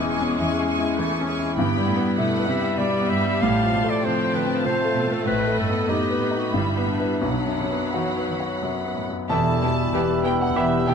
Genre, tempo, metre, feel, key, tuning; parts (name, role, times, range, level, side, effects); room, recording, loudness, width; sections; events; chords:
classical, romantic movement for piano and orchestra; 84-104 BPM; 3/4; rubato; E minor; A4 = 440 Hz
bright baby grand piano; melody; 0.0-10.9 s; B1 to A5; -23 LUFS; left 2 dB
clear clarinet; second line; 0.0-10.9 s; B3 to F5; -28 LUFS; equal
clear symphonic violin section; second line; 0.0-10.9 s; E4 to C#6; -31 LUFS; right 1 dB
rich symphonic viola section; accompaniment; 0.0-10.9 s; E3 to B3; -30 LUFS; right 1 dB
rich symphonic cello section; bass; 0.0-10.9 s; E2 to E3; -30 LUFS; right 4 dB
warm chamber double bass section; bass; 0.0-10.9 s; E1 to B1; -29 LUFS; right 5 dB
rich symphonic violin section; melody; 9.3-10.9 s; E5 to A5; -34 LUFS; equal
mellow concert flute; second line; 9.3-10.9 s; B5; -32 LUFS; right 3 dB
warm oboe; second line; 9.3-10.9 s; E5; -32 LUFS; right 6 dB
mellow bassoon; accompaniment; 9.3-10.9 s; G3; -32 LUFS; right 2 dB
dark French horn section; sustained chords; 9.3-10.9 s; G4 to A4; -30 LUFS; left 12 dB
light reverb; close, detailed microphones; -20 LUFS; side -6 dB against mid
0.0-9.3 A section; 9.3-10.9 B section
0.0 C#m/E; 1.6 Em/G; 3.4 F/A; 5.3 B7/A; 6.5 Em/G; 7.2 B; 9.3 Em